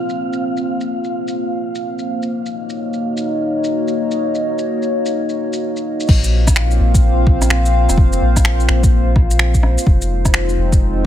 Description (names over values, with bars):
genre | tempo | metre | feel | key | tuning
future garage | 127 BPM | 4/4 | swing 63% on 16ths | Bb minor | A4 = 440 Hz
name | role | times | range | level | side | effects
dark analog pad | sustained chords | 0.0-11.1 s | Ab3 to F5 | -19 LUFS | left 1 dB | chorus, phaser, sidechain pumping
wind-like tuned noise texture | texture | 0.0-6.1 s | F5 | -31 LUFS | right 2 dB | built-in reverb
deep house drum kit | drums | 0.1-10.8 s | crash cymbal, finger snaps, rim click, shaker | -21 LUFS | equal | low-pass filter on perc, low-pass filter on cymbals, low-pass filter on snare
soft dub sub bass | bass | 6.1-11.1 s | F1 to Bb1 | -15 LUFS | equal | sidechain pumping
electronic kick drum | drums | 6.1-10.8 s | none | -13 LUFS | equal | none
room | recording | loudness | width
light reverb | none | -14 LUFS | side -11 dB against mid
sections
0.0-6.1 A section; 6.1-11.1 B section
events
none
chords
0.0 Bbsus2; 2.3 Ebm7; 6.1 Bbsus2; 9.9 Fm7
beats
| 0.42 0.89 1.36 1.84 | 2.31 2.78 3.25 3.73 | 4.20 4.67 5.14 5.62 | 6.09 6.56 7.03 7.51 | 7.98 8.45 8.92 9.40 | 9.87 10.34 10.81